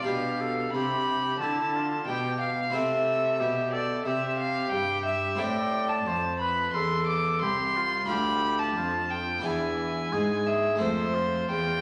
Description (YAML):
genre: classical, baroque-style sonata movement with continuo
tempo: 89 BPM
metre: 4/4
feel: rubato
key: C major, A minor from 5.4 s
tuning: A4 = 440 Hz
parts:
  - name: rich violin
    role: melody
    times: 0.0-11.8 s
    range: C5 to D6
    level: -30 LUFS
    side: equal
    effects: none
  - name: warm oboe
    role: second line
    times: 0.0-11.8 s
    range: E4 to D5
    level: -35 LUFS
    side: equal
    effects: none
  - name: harpsichord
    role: accompaniment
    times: 0.0-11.8 s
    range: C2 to A4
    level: -35 LUFS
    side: equal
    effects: none
  - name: rich cello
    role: bass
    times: 0.0-11.8 s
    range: C2 to D3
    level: -36 LUFS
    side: equal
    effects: none
room: wet recital hall reverb, RT60 1.4 s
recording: vinyl crackle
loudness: -27 LUFS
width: mono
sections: 0.0-11.8 A section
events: none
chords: 0.1 G7/B; 2.7 C; 5.4 Am; 8.1 Dm; 9.4 E7; 10.8 F